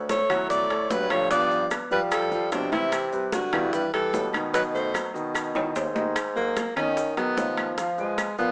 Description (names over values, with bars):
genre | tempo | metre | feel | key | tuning
Afro-Cuban jazz | 148 BPM | 4/4 | straight | unclear | A4 = 440 Hz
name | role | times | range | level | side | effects
warm baby grand piano | accompaniment | 0.0-8.5 s | D#3 to F#5 | -33 LUFS | equal | none
warm bassoon | bass | 0.0-8.5 s | D2 to G3 | -33 LUFS | equal | none
breathy alto saxophone | melody | 0.1-5.1 s | D4 to D5 | -28 LUFS | equal | plate reverb
warm tenor saxophone | second line | 0.1-8.5 s | B2 to C#4 | -33 LUFS | equal | none
bongos | percussion | 0.1-8.4 s | none | -39 LUFS | equal | none
congas | percussion | 0.1-8.5 s | none | -41 LUFS | equal | none
maracas | percussion | 0.1-8.5 s | none | -49 LUFS | equal | none
timbales | percussion | 0.1-8.4 s | none | -35 LUFS | equal | none
claves | percussion | 0.3-8.4 s | none | -36 LUFS | equal | none
room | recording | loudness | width
moderate studio reverb, RT60 0.9 s | small speaker sound | -26 LUFS | mono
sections
0.0-6.2 A section; 6.2-8.5 B section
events
drum fill 5.4-6.2; tenor saxophone solo 6.2-8.5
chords
0.0 Dmaj7; 1.3 G9; 2.9 Cmaj9; 4.5 B7b9; 6.2 G#m9; 7.8 Fdim